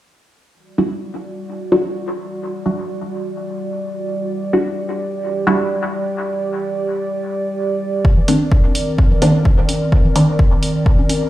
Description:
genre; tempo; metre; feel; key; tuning
dub techno; 128 BPM; 4/4; swing 54% on 16ths; E minor; A4 = 440 Hz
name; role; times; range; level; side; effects
airy breathy pad; sustained chords; 0.9-11.3 s; Eb3 to D5; -22 LUFS; right 1 dB; chorus, sidechain pumping
filtered dub chord stab; stabs; 0.8-11.3 s; Eb3 to F#4; -18 LUFS; equal; chorus, phaser, vintage 12-bit sampler grit, sidechain pumping, dub echo
electronic kick drum; drums; 8.0-11.0 s; none; -14 LUFS; equal; none
congas and bongos; percussion; 8.2-11.2 s; none; -26 LUFS; left 1 dB; overdrive, sidechain pumping on perc, dub echo
electronic hi-hat; drums; 8.3-11.2 s; none; -25 LUFS; right 1 dB; none
room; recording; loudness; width
light reverb; played on a big sound system in a bare room, large studio reverb; -16 LUFS; side -14 dB against mid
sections
0.5-11.3 A section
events
filter sweep on synth stab 0.5-11.3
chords
0.5 Em9; 8.0 Cm9

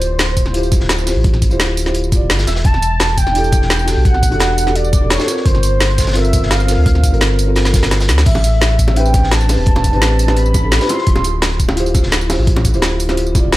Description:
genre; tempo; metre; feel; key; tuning
liquid drum and bass; 171 BPM; 4/4; straight; unclear; A4 = 442 Hz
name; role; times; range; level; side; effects
warm velvety synth lead; melody; 0.0-11.2 s; C5 to C6; -21 LUFS; right 1 dB; chorus, digital delay
felt-muted upright piano; accompaniment; 0.0-13.6 s; C4 to D5; -20 LUFS; equal; none
sub bass with octave; bass; 0.0-13.6 s; D1 to D2; -16 LUFS; equal; tube saturation
crunchy breakbeat drum kit; drums; 0.0-13.6 s; hi-hat, snare drum; -27 LUFS; equal; high-pass filter on hats, studio reverb, high-pass filter on snare, high-pass filter on room
drum and bass drum kit; drums; 0.0-13.6 s; crash cymbal, hi-hat, snare drum, tambourine; -19 LUFS; equal; overdrive, studio reverb
electronic kick drum; drums; 0.4-13.4 s; none; -14 LUFS; equal; studio reverb
bongos; percussion; 8.4-13.4 s; none; -24 LUFS; right 1 dB; none
room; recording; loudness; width
light reverb, studio reverb; dark, warm production; -11 LUFS; side -16 dB against mid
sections
0.0-13.6 A section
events
drum fill 7.6-8.3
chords
0.0 Dm11; 2.6 Em11; 5.5 Gm11; 8.3 Am11; 11.1 Dm11

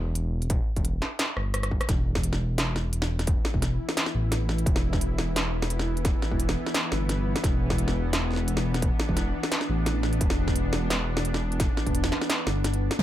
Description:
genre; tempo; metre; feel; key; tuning
half-time drum and bass; 173 BPM; 4/4; swing 53% on 16ths, half-time; E minor; A4 = 440 Hz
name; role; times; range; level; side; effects
dark detuned saw bass; bass; 0.0-12.9 s; E1 to A1; -27 LUFS; equal; none
industrial drum kit; drums; 0.2-13.0 s; hi-hat, rim click, snare drum; -29 LUFS; equal; low-pass filter on hats, low-pass filter on snare, low-pass filter on room
electronic kick drum; drums; 0.5-11.9 s; none; -27 LUFS; equal; distortion
bowed-like drone; sustained chords; 2.7-13.0 s; E3 to E4; -32 LUFS; left 1 dB; built-in reverb, vintage 12-bit sampler grit, sidechain pumping
impact; sound effects; 13.0 s; none; -19 LUFS; equal; none
room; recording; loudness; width
light reverb; none; -24 LUFS; side -13 dB against mid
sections
0.0-13.0 A section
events
drum fill 1.4-1.9; kick drops out 12.3-13.0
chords
0.0 E5

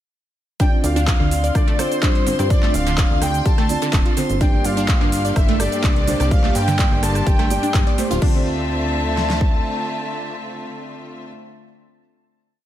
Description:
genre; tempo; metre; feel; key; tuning
progressive house; 126 BPM; 4/4; straight; D minor; A4 = 441 Hz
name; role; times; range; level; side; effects
soft octave-layered synth lead; melody; 0.6-11.3 s; C5 to A5; -27 LUFS; left 2 dB; chorus, tremolo, sidechain pumping, ping-pong delay
soft supersaw; second line; 0.6-11.3 s; C5 to A5; -30 LUFS; equal; phaser, vintage 12-bit sampler grit, sidechain pumping, ping-pong delay
wide unison pluck; arpeggios; 0.6-8.4 s; D3 to D5; -26 LUFS; right 1 dB; vintage 12-bit sampler grit, sidechain pumping, ping-pong delay
felt-muted upright piano; stabs; 0.6-11.3 s; G2 to D5; -26 LUFS; right 2 dB; sidechain pumping, ping-pong delay
big-room dance drum kit; drums; 0.6-9.5 s; kick drum, snare drum; -18 LUFS; equal; overdrive
big-room dance drum kit; drums; 0.6-8.3 s; cabasa, crash cymbal, handclaps, hi-hat, rim click; -27 LUFS; equal; overdrive
drifting glass-harmonics texture; texture; 1.0-8.2 s; C6; -35 LUFS; right 1 dB; chorus, built-in reverb, sidechain pumping
plucky analog bass; bass; 0.8-9.6 s; D1 to G2; -23 LUFS; equal; sidechain pumping
clear symphonic string section; sustained chords; 4.4-11.3 s; D3 to E5; -28 LUFS; left 1 dB; sidechain pumping
room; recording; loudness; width
light reverb; none; -16 LUFS; side -12 dB against mid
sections
0.6-8.2 drop; 8.2-12.0 final chord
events
drop 0.6-8.2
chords
0.6 Dm7; 4.4 Gm; 8.2 Dm7

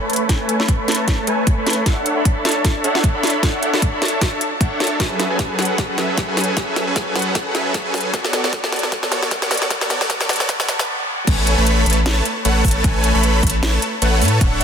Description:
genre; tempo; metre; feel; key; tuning
future bass; 153 BPM; 4/4; swing 56% on 16ths, half-time; unclear; A4 = 445 Hz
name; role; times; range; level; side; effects
supersaw chords; riff; 0.0-14.6 s; F#3 to B5; -19 LUFS; equal; sidechain pumping, low-pass filter, ping-pong delay
saturated sub bass; bass; 0.0-14.6 s; D1 to A2; -19 LUFS; equal; sidechain pumping, high-pass filter
trap drum kit; drums; 0.1-14.6 s; crash cymbal, hi-hat, snare drum; -21 LUFS; equal; small room ambience
electronic kick drum; drums; 0.3-14.5 s; none; -18 LUFS; equal; small room ambience
room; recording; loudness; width
moderate shimmer reverb, RT60 5.8 s; dense, heavily limited modern master, high-pass filter; -16 LUFS; side -7 dB against mid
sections
0.0-11.3 A section; 11.3-14.6 B section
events
build-up 0.0-11.3; drum fill 0.0-10.9; filter sweep on supersaw synth 0.0-11.3; filter sweep 0.0-11.3; stop 10.9-11.3; drop 11.3-14.6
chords
0.0 Amaj9; 1.9 Dmaj9; 5.0 F#m11; 8.1 Bm9; 11.3 Amaj9

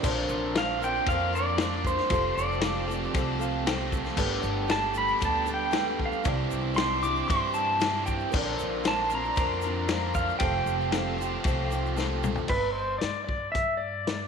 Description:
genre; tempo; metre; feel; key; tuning
folk rock and heartland rock; 116 BPM; 4/4; straight; unclear; A4 = 440 Hz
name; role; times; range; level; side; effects
picked twelve-string acoustic guitar; accompaniment; 0.0-12.5 s; G2 to Bb4; -34 LUFS; left 9 dB; none
reed electric piano; accompaniment; 0.0-12.5 s; D4 to G5; -39 LUFS; right 12 dB; none
biting overdriven guitar; riff; 0.0-12.5 s; F2 to G4; -34 LUFS; right 14 dB; none
upright bass; bass; 0.0-14.3 s; F1 to G2; -34 LUFS; right 1 dB; none
vintage drum kit; drums; 0.0-14.2 s; crash cymbal, hi-hat, kick drum, ride cymbal, snare drum, toms; -31 LUFS; left 3 dB; none
egg shaker; percussion; 0.0-12.4 s; none; -51 LUFS; right 16 dB; none
rich chamber string section; sustained chords; 0.1-12.5 s; G4 to D6; -40 LUFS; left 3 dB; none
pedal steel guitar; melody; 0.6-14.3 s; B4 to D6; -28 LUFS; right 1 dB; slapback echo
room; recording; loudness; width
moderate echo chamber reverb, RT60 1.8 s; 1960s-style stereo with parts hard left and right; -25 LUFS; side -6 dB against mid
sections
0.0-12.5 A section; 12.5-14.3 B section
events
reed electric piano fill 3.1-4.2; drum fill 12.0-12.5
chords
0.0 Bbadd9; 2.1 Fadd9; 4.2 Gadd9; 6.3 Cadd9; 8.3 Bbadd9; 10.4 Fadd9; 12.5 G5

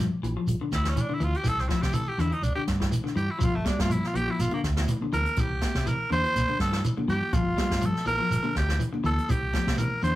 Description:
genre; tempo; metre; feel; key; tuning
afrobeat; 122 BPM; 4/4; swing 53% on 16ths; G dorian; A4 = 440 Hz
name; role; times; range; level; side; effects
clean electric guitar; arpeggios; 0.0-10.1 s; D3 to G3; -32 LUFS; left 4 dB; none
hollow-body short-scale fingered electric bass; bass; 0.0-10.1 s; G1 to C3; -29 LUFS; equal; none
jazz brush drum kit; drums; 0.0-10.2 s; hi-hat, kick drum, snare drum; -31 LUFS; equal; none
shekere; percussion; 0.2-10.2 s; none; -31 LUFS; right 1 dB; none
raspy tenor saxophone; melody; 0.7-10.2 s; A3 to C5; -29 LUFS; right 1 dB; none
congas; percussion; 3.4-10.2 s; none; -34 LUFS; equal; none
room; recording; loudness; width
moderate small room reverb, RT60 0.5 s; rough rehearsal-room recording, warm saturation; -24 LUFS; side -15 dB against mid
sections
0.0-10.2 A section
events
tenor saxophone solo 0.0-10.2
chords
0.0 G7(no3); 1.5 C; 3.4 G7(no3); 5.4 C; 7.3 Gm7; 9.3 C

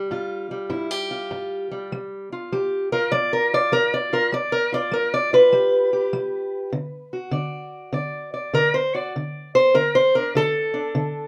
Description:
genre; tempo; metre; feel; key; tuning
acoustic country blues, solo or duo; 100 BPM; 4/4; swing 66% on 8ths; G mixolydian; A4 = 440 Hz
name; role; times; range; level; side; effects
fingerpicked steel-string acoustic guitar; solo; 0.0-11.3 s; G2 to D5; -22 LUFS; equal; none
room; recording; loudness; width
moderate studio reverb, RT60 0.5 s; none; -22 LUFS; mono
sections
0.0-11.3 A section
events
steel-string acoustic guitar solo 0.0-11.3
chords
0.0 G7; 6.7 D

